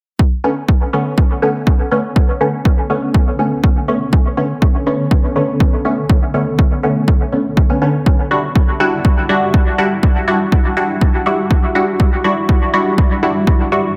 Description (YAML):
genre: dub techno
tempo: 122 BPM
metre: 4/4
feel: straight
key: B minor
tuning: A4 = 440 Hz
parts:
  - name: granular cloud pad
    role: sustained chords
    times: 1.6-14.0 s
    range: D3 to A4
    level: -26 LUFS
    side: equal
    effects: built-in reverb, sidechain pumping
  - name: electronic kick drum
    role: drums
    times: 0.2-13.6 s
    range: none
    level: -15 LUFS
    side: equal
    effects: overdrive
  - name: filtered dub chord stab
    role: stabs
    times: 0.4-13.8 s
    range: D3 to F#4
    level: -19 LUFS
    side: equal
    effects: chorus, phaser, cassette tape, sidechain pumping, dub echo
room: moderate spring reverb, RT60 1.6 s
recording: none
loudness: -15 LUFS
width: mono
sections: 0.2-14.0 A section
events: filter sweep on ambient pad 0.2-14.0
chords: 0.2 Bm9; 8.1 Em9